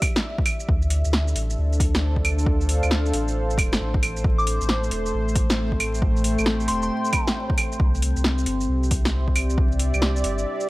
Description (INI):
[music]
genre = future garage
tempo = 135 BPM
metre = 4/4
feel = swing 64% on 16ths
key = A minor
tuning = A4 = 440 Hz
[part]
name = dark analog pad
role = sustained chords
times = 0.0-10.7 s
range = A3 to G5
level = -28 LUFS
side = equal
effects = chorus, sidechain pumping
[part]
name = deep house drum kit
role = drums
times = 0.0-10.7 s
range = claves, hi-hat, shaker, snare drum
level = -25 LUFS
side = equal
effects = overdrive
[part]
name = electronic kick drum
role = drums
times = 0.0-9.7 s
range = none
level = -23 LUFS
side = equal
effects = overdrive
[part]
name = warm sub bass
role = bass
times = 0.7-10.5 s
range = D1 to D2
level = -23 LUFS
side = equal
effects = tube saturation, sidechain pumping
[part]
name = drifting glass-harmonics texture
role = texture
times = 5.6-10.7 s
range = C4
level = -36 LUFS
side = equal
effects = chorus, built-in reverb
[part]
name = soft synth bell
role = melody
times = 4.4-7.3 s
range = C6 to D6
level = -29 LUFS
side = left 1 dB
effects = chorus, vintage 12-bit sampler grit, tape echo
[sound]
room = digital ambience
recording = vinyl crackle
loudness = -20 LUFS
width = side -19 dB against mid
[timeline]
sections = 0.0-10.7 A section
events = none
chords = 0.0 Em7; 0.7 Dm7; 4.2 Am7; 7.8 Cadd9